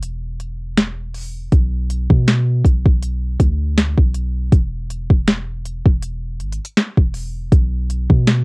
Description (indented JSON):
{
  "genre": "contemporary R&B",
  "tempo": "80 BPM",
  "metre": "4/4",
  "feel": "swing 54% on 16ths",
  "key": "B dorian",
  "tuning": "A4 = 440 Hz",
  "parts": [
    { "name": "long sustained 808-style bass", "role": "bass", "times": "0.0-8.4 s", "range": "E1 to B2", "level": "-20 LUFS", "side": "equal", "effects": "none" },
    { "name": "smooth R&B drum kit", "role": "drums", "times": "0.0-8.4 s", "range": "hi-hat, kick drum, snare drum", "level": "-13 LUFS", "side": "equal", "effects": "overdrive, cassette tape" }
  ],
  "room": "little or no reverb",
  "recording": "home recording on cassette",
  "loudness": "-15 LUFS",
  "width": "side -39 dB against mid",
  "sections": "0.0-8.4 A section",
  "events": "none",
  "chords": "none",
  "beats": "0.02 0.77 | 1.52 2.27 3.02 3.77 | 4.52 5.27 6.02 6.77 | 7.52 8.27"
}